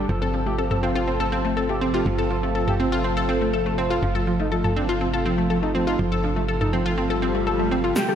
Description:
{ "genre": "melodic techno", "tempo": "122 BPM", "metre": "4/4", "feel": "straight", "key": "unclear", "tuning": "A4 = 440 Hz", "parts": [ { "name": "warm analog pad", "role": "sustained chords", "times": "0.0-8.2 s", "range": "C3 to A4", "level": "-28 LUFS", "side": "right 1 dB", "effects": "chorus" }, { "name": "analog pluck", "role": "arpeggios", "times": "0.0-8.2 s", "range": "F3 to A4", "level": "-25 LUFS", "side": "left 1 dB", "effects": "chorus, analog delay" }, { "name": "tight sequencer bass", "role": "bass", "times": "0.0-7.9 s", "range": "G1", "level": "-28 LUFS", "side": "equal", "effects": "none" }, { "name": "expressive synth lead", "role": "melody", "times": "0.1-8.1 s", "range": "F3 to A4", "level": "-27 LUFS", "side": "equal", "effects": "chorus, tape echo" }, { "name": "house drum kit", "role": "drums", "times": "0.1-8.1 s", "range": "shaker, snare drum, toms", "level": "-28 LUFS", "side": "right 1 dB", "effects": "studio reverb" }, { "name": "swell and riser", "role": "sound effects", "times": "7.1-8.2 s", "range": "none", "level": "-29 LUFS", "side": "equal", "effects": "none" }, { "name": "soft supersaw", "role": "second line", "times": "8.0-8.1 s", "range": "G4 to G5", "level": "-25 LUFS", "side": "left 1 dB", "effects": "vintage 12-bit sampler grit, low-pass filter" } ], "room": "wet lush hall reverb, RT60 2.0 s, digital ambience", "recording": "dreamy mix soaked in reverb", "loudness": "-20 LUFS", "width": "side -9 dB against mid", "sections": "0.0-8.0 A section", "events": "swell 7.1-8.0; drum fill 8.0", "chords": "0.1 F/G", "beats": "| 0.09 0.58 1.07 1.57 | 2.06 2.55 3.04 3.53 | 4.03 4.52 5.01 5.50 | 5.99 6.49 6.98 7.47 | 7.96" }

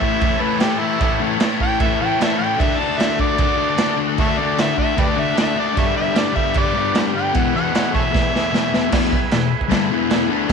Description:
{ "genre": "garage rock duo or trio", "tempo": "152 BPM", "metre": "4/4", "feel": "straight", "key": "unclear", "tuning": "A4 = 440 Hz", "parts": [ { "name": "overdriven harmonica", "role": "melody", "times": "0.0-8.9 s", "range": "E4 to A5", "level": "-22 LUFS", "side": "right 3 dB", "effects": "none" }, { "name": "overdriven combo organ", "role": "sustained chords", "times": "0.0-10.5 s", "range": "E4 to E5", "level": "-27 LUFS", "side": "right 11 dB", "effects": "none" }, { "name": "thick fuzz guitar", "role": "riff", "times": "0.0-10.5 s", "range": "E2 to D4", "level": "-20 LUFS", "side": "left 11 dB", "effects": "distortion" }, { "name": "raw garage drum kit", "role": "drums", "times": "0.0-10.5 s", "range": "crash cymbal, kick drum, snare drum", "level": "-20 LUFS", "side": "right 3 dB", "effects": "none" } ], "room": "light reverb, small room ambience", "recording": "1960s-style stereo with parts hard left and right", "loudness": "-16 LUFS", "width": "side -6 dB against mid", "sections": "0.0-8.9 A section; 8.9-10.5 B section", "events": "drum fill 8.1-8.9", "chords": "0.0 A; 2.6 D; 5.8 G; 7.3 E", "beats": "0.22 0.61 | 1.01 1.41 1.81 2.21 | 2.60 3.00 3.40 3.79 | 4.19 4.58 4.98 5.38 | 5.77 6.17 6.56 6.96 | 7.35 7.74 8.14 8.53 | 8.92 9.32 9.71 10.10 | 10.50" }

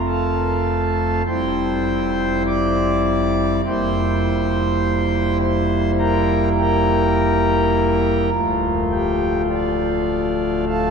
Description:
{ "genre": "classical, chorale-style piece for pipe organ", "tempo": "51 BPM", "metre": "4/4", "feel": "rubato", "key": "unclear", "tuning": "A4 = 439 Hz", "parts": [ { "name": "pipe organ, foundations", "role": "solo", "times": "0.0-10.9 s", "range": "D1 to D6", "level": "-17 LUFS", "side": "equal", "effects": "none" } ], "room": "wet cathedral reverb, RT60 4.2 s", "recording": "recorded in a church or concert hall, faint mains hum", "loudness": "-17 LUFS", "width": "side -6 dB against mid", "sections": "0.0-10.9 A section", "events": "none", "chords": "0.0 F; 1.3 C/F; 3.6 C7/F; 8.3 Dm", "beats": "0.05 1.26 2.46 | 3.64 4.82 5.99 7.17 | 8.33 9.51 10.69" }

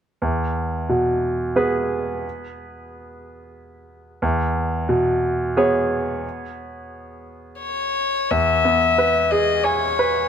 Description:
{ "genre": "neoclassical piano and strings", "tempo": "90 BPM", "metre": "3/4", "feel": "rubato", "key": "unclear", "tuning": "A4 = 437 Hz", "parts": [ { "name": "bright grand piano", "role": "accompaniment", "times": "0.2-10.3 s", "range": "E2 to G#5", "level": "-20 LUFS", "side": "right 2 dB", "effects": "none" }, { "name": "warm violin", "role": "melody", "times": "7.6-10.3 s", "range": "C#5 to E5", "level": "-18 LUFS", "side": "left 5 dB", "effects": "none" } ], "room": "light reverb", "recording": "none", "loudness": "-18 LUFS", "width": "side -8 dB against mid", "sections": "0.2-8.3 A section; 8.3-10.3 B section", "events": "none", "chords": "0.2 E; 4.2 C#m7/E; 8.3 E", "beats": "| 0.23 0.90 1.57 | 2.24 2.90 3.56 | 4.22 4.89 5.56 | 6.23 6.91 7.60 | 8.31 8.99 9.66" }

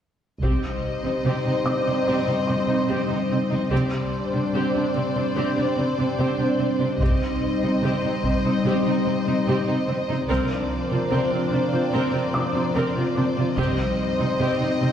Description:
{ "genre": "cinematic, hybrid orchestral and electronic film score", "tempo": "73 BPM", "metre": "4/4", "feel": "straight", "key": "C minor", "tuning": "A4 = 439 Hz", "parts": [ { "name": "warm symphonic violin section", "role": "second line", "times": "0.4-14.9 s", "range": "C5 to Eb5", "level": "-28 LUFS", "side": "left 3 dB", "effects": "none" }, { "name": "rich symphonic viola section", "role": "accompaniment", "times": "0.4-14.9 s", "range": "C4 to Bb4", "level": "-29 LUFS", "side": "right 1 dB", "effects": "none" }, { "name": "chorused pulse-width pad", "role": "sustained chords", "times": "0.6-14.9 s", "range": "F3 to C5", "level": "-25 LUFS", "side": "equal", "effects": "phaser" }, { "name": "warm symphonic cello section", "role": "bass", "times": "0.4-14.9 s", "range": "C3", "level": "-26 LUFS", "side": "right 1 dB", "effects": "none" }, { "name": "warm symphonic double bass section", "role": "bass", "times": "0.4-13.8 s", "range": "C2", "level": "-29 LUFS", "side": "right 1 dB", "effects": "none" }, { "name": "taiko ensemble", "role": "drums", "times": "0.4-2.0, 7.0-8.6, 13.6-14.9 s", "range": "none", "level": "-27 LUFS", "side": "equal", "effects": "none" }, { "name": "felt-muted upright piano", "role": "texture", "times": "1.7-7.0, 12.3-14.9 s", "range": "C6 to D6", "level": "-35 LUFS", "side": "equal", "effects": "digital delay" } ], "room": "wet scoring stage reverb, RT60 1.7 s", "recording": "heard from further back in the room", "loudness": "-20 LUFS", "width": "side -9 dB against mid", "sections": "0.4-14.9 A section", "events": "none", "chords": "0.4 Cm; 3.7 Gsus4/C; 7.0 Cm; 10.3 Bbadd9/C; 13.6 Cm", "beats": "| 0.43 1.25 2.07 2.89 | 3.72 4.54 5.36 6.18 | 7.00 7.83 8.65 9.47 | 10.29 11.11 11.94 12.76 | 13.58 14.40" }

